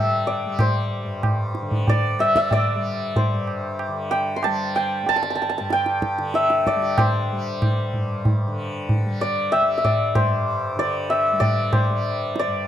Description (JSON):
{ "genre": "indian classical, Hindustani", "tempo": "94 BPM", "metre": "5/4", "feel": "straight", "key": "G raga durga", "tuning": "A4 = 440 Hz", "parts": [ { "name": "santur", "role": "melody", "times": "0.0-12.7 s", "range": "C5 to C6", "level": "-22 LUFS", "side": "equal", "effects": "none" }, { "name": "tanpura", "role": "drone", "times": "0.0-12.7 s", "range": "G2 to G3", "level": "-30 LUFS", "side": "left 1 dB", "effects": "none" }, { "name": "tabla", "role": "percussion", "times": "0.3-12.6 s", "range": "none", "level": "-23 LUFS", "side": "right 1 dB", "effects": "none" } ], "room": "light reverb", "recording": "dry, close 1970s-style studio recording", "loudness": "-19 LUFS", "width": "side -10 dB against mid", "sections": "0.0-12.7 A section", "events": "none", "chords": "none" }